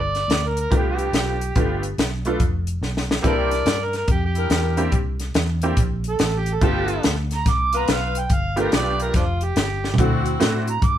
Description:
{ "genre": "electric blues shuffle", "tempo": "142 BPM", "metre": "4/4", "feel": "swing 65% on 8ths", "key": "G mixolydian", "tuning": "A4 = 440 Hz", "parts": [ { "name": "overdriven harmonica", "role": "second line", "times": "0.0-11.0 s", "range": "C4 to D6", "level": "-25 LUFS", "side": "right 3 dB", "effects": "none" }, { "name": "vintage muted fingered electric bass", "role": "bass", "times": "0.0-11.0 s", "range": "F1 to A2", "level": "-25 LUFS", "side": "equal", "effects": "none" }, { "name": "compact cocktail drum kit", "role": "drums", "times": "0.1-11.0 s", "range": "hi-hat, kick drum, snare drum, toms", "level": "-22 LUFS", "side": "left 1 dB", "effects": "none" }, { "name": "honky-tonk upright piano", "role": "accompaniment", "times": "0.7-10.7 s", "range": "A3 to A4", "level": "-25 LUFS", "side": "right 2 dB", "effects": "none" }, { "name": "clear saxophone section", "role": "stabs", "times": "3.2-10.5 s", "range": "B3 to B4", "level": "-26 LUFS", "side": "left 4 dB", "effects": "none" } ], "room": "light reverb", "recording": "band playing live in one room", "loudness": "-18 LUFS", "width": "side -11 dB against mid", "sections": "0.0-11.0 A section", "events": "harmonica solo 0.0-11.0; drum fill 2.8-3.2, 9.8", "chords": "0.0 G9; 3.2 C9; 6.6 G9; 10.0 D9" }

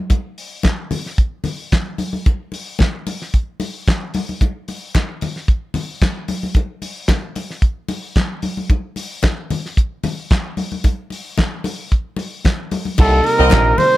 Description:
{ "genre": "disco", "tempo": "112 BPM", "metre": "4/4", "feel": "straight", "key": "C dorian", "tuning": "A4 = 437 Hz", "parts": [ { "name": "damped 70s drum kit", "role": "drums", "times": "0.1-14.0 s", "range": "crash cymbal, handclaps, hi-hat, kick drum, snare drum", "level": "-18 LUFS", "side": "equal", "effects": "none" }, { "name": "congas", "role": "percussion", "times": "0.1-13.9 s", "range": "none", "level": "-24 LUFS", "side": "left 3 dB", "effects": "none" }, { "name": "clear flugelhorn", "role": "melody", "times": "13.0-14.0 s", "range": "A4 to C5", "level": "-14 LUFS", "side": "right 1 dB", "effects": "slapback echo" }, { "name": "tonewheel organ", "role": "sustained chords", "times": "13.0-14.0 s", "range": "C3 to Eb4", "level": "-24 LUFS", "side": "right 2 dB", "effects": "chorus vibrato, slow rotary speaker" }, { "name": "picked electric bass with an envelope filter", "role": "bass", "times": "13.0-13.7 s", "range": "Bb1 to C2", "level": "-15 LUFS", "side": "equal", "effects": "none" }, { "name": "clear studio string section", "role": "second line", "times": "13.4-13.5 s", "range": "C4 to Eb5", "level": "-19 LUFS", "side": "equal", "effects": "none" }, { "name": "group handclap", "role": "percussion", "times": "13.5-13.7 s", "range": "none", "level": "-28 LUFS", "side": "right 3 dB", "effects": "none" } ], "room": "little or no reverb", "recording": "none", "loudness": "-17 LUFS", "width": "side -16 dB against mid", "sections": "0.0-13.0 A section", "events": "none", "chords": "0.0 N.C.; 13.0 Cm7" }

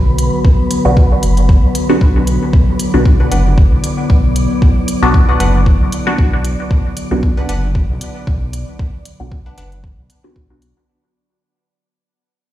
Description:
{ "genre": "dub techno", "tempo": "115 BPM", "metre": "4/4", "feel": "swing 55% on 16ths", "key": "B minor", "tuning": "A4 = 440 Hz", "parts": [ { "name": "warbly tape-like pad", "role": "sustained chords", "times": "0.0-10.9 s", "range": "D3 to F#4", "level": "-20 LUFS", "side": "left 1 dB", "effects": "chorus, built-in reverb, sidechain pumping" }, { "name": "round analog bass", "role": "bass", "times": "0.0-10.7 s", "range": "F#1 to B1", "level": "-15 LUFS", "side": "equal", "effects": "sidechain pumping" }, { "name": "wind-like tuned noise texture", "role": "texture", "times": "0.0-10.9 s", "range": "B3 to D5", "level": "-26 LUFS", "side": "equal", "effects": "built-in reverb, sidechain pumping" }, { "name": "electronic hi-hat", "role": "drums", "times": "0.2-10.7 s", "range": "none", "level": "-26 LUFS", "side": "equal", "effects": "none" }, { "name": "electronic kick drum", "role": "drums", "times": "0.4-10.5 s", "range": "none", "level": "-12 LUFS", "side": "equal", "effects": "none" }, { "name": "filtered dub chord stab", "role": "stabs", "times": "0.8-10.8 s", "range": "B3 to F#4", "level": "-18 LUFS", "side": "left 1 dB", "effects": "phaser, dub echo" }, { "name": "wavetable chord stab", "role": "riff", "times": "3.2-9.7 s", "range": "D4 to F#5", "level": "-26 LUFS", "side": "left 2 dB", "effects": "sidechain pumping, dub echo" } ], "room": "light reverb", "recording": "played on a big sound system in a bare room, stone room reverb", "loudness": "-11 LUFS", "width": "side -13 dB against mid", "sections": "0.0-10.9 A section", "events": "fade-out 5.3-10.9", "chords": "0.0 Bm" }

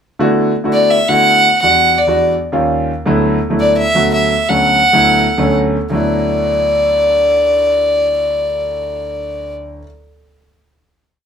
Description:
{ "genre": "jazz", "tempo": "168 BPM", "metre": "4/4", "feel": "straight", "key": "D major", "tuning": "A4 = 440 Hz", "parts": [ { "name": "warm concert grand piano", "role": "accompaniment", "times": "0.2-9.8 s", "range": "D2 to F#4", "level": "-16 LUFS", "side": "equal", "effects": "none" }, { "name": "dark fiddle", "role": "melody", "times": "0.7-9.5 s", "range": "D5 to F#5", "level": "-12 LUFS", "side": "equal", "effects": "none" } ], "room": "wet studio reverb, RT60 0.5 s", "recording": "band playing live in one room", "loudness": "-11 LUFS", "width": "side -7 dB against mid", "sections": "0.2-5.9 A section; 5.9-8.8 final chord", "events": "none", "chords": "0.2 D69; 1.6 Em9; 2.3 Eb9; 3.1 D69" }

